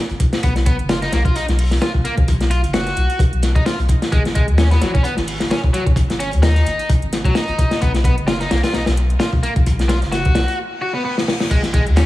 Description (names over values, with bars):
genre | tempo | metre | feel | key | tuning
breakbeat, breaks | 130 BPM | 4/4 | swing 55% on 16ths | unclear | A4 = 440 Hz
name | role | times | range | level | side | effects
saturated sub bass | bass | 0.1-12.1 s | F#1 to D#2 | -18 LUFS | equal | none
crunchy breakbeat drum kit | drums | 0.1-12.1 s | crash cymbal, hi-hat, kick drum, snare drum | -18 LUFS | equal | none
house drum kit | drums | 0.2-12.1 s | handclaps, hi-hat | -34 LUFS | right 2 dB | none
overdriven electric guitar | riff | 0.4-12.1 s | F#3 to F#4 | -23 LUFS | equal | tube saturation, vintage 12-bit sampler grit, dub echo
reverse cymbal | sound effects | 10.7-11.5 s | none | -30 LUFS | left 3 dB | none
room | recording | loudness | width
little or no reverb | heavily compressed radio sound, small room ambience | -15 LUFS | side -16 dB against mid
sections
0.0-11.5 A section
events
break 10.6-11.5; reverse cymbal 10.7-11.5; drum fill 11.2-11.5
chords
0.4 B5; 4.1 G#5; 7.8 B5; 11.5 G#5